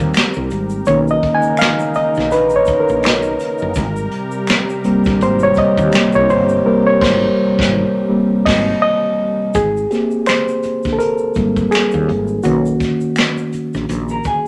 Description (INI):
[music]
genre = R&B, neo-soul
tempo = 83 BPM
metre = 4/4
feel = swing 59% on 16ths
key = Ab major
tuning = A4 = 439 Hz
[part]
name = barky reed electric piano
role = accompaniment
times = 0.0-14.5 s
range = D#3 to Ab5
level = -17 LUFS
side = equal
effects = none
[part]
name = warm analog pad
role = sustained chords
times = 0.0-9.5 s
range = C3 to Bb4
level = -24 LUFS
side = equal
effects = chorus
[part]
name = woody fretless electric bass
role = bass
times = 0.0-14.2 s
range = F#1 to Eb2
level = -24 LUFS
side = equal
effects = none
[part]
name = egg shaker and finger snaps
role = percussion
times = 0.0-14.4 s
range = none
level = -35 LUFS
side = equal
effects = none
[part]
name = vintage brush drum kit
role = drums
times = 0.1-14.4 s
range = crash cymbal, finger snaps, hi-hat, kick drum, snare drum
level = -22 LUFS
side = equal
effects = none
[part]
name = electric guitar through a small old amp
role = second line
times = 14.1-14.5 s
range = Ab4 to A#4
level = -21 LUFS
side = equal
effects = phaser
[sound]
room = moderate studio reverb, RT60 0.6 s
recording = none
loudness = -16 LUFS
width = mono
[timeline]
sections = 0.0-9.5 A section; 9.5-14.5 B section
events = reed electric piano solo 0.0-9.5, 9.5-14.5; band accent 6.7-9.5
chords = 0.0 Abmaj9; 0.9 Bmaj9; 3.8 Abmaj9; 12.4 Bmaj9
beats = 0.15 | 0.87 1.59 2.32 3.04 | 3.76 4.49 5.21 5.93 | 6.65 7.38 8.10 8.82 | 9.55 10.27 10.99 11.71 | 12.44 13.16 13.88